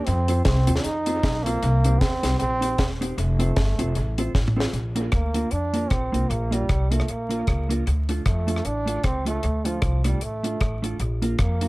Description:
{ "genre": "ska", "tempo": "154 BPM", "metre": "4/4", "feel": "swing 58% on 8ths", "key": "Bb major", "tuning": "A4 = 436 Hz", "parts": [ { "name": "warm trombone", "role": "melody", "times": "0.0-11.7 s", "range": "F3 to Eb4", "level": "-28 LUFS", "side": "right 2 dB", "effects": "none" }, { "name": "mellow electric guitar", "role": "accompaniment", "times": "0.0-11.7 s", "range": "A3 to C5", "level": "-28 LUFS", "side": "right 1 dB", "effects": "none" }, { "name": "upright bass", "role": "bass", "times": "0.1-11.7 s", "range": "E1 to F2", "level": "-24 LUFS", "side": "equal", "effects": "none" }, { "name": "deep reggae drum kit", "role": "drums", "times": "0.1-11.7 s", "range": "hi-hat, kick drum, rim click, snare drum, toms", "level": "-25 LUFS", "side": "equal", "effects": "dub echo" } ], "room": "small room ambience", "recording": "vinyl crackle", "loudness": "-21 LUFS", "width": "side -20 dB against mid", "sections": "0.0-4.7 A section; 4.7-11.7 B section", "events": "drum fill 4.3-4.7", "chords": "0.1 F; 1.6 Cm; 3.2 F; 4.7 Bb; 7.9 Dm; 11.0 Bb", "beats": "| 0.06 0.45 0.84 1.23 | 1.62 2.01 2.40 2.79 | 3.17 3.56 3.95 4.34 | 4.73 5.12 5.52 5.91 | 6.30 6.69 7.08 7.47 | 7.86 8.26 8.65 9.04 | 9.43 9.82 10.21 10.61 | 11.00 11.39" }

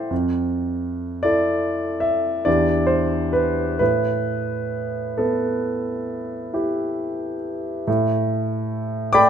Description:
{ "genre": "classical, impressionist solo piano", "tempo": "42-55 BPM (dotted quarters)", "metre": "9/8", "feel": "rubato", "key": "A minor", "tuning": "A4 = 441 Hz", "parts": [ { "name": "clear concert grand piano", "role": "solo", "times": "0.0-9.3 s", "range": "E2 to D6", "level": "-20 LUFS", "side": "equal", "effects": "none" } ], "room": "moderate large studio reverb, RT60 1.3 s", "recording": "none", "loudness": "-20 LUFS", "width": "side -8 dB against mid", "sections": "0.0-7.9 A section; 7.9-9.3 B section", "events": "none", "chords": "0.1 Fmaj7; 2.5 Em7; 3.8 Asus2; 7.9 N.C.", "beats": "| 0.11 1.24 2.46 | 3.79 5.18 6.54 | 7.87 9.12" }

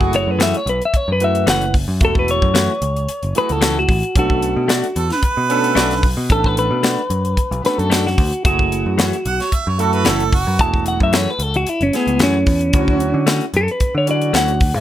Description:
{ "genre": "straight-eighth soul blues", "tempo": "112 BPM", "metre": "4/4", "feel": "swing 53% on 16ths", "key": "F# minor", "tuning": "A4 = 444 Hz", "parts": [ { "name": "barky tine electric piano", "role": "accompaniment", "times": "0.0-14.6 s", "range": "A3 to B4", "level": "-23 LUFS", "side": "right 4 dB", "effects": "overdrive, wide subtle chorus" }, { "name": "mellow horn section", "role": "sustained chords", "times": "0.0-14.5 s", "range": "F#3 to A4", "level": "-28 LUFS", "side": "left 1 dB", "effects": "none" }, { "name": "picked electric bass", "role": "bass", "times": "0.0-14.8 s", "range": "E1 to D3", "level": "-20 LUFS", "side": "equal", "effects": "none" }, { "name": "tight funk drum kit", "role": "drums", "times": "0.0-14.7 s", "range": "hi-hat, kick drum, snare drum", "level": "-18 LUFS", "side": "equal", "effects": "none" }, { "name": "clean electric guitar", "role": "melody", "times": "0.2-14.8 s", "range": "B3 to A5", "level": "-19 LUFS", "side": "left 1 dB", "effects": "none" }, { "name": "direct-recorded clean electric guitar", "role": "stabs", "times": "0.4-14.5 s", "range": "E3 to F#4", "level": "-21 LUFS", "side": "left 5 dB", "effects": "none" }, { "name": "bright harmonica", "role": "second line", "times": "5.0-10.6 s", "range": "F#4 to F#5", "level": "-21 LUFS", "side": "right 4 dB", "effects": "analog delay" } ], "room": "light reverb", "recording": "none", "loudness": "-14 LUFS", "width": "side -12 dB against mid", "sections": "0.0-14.8 A section", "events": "none", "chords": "0.0 F#m7; 4.2 Bm7; 8.4 F#m7; 12.7 Dmaj7", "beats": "0.40 0.94 1.48 | 2.01 2.55 3.08 3.62 | 4.16 4.69 5.23 5.76 | 6.30 6.84 7.37 7.91 | 8.45 8.98 9.52 10.05 | 10.59 11.13 11.66 12.20 | 12.74 13.27 13.81 14.35" }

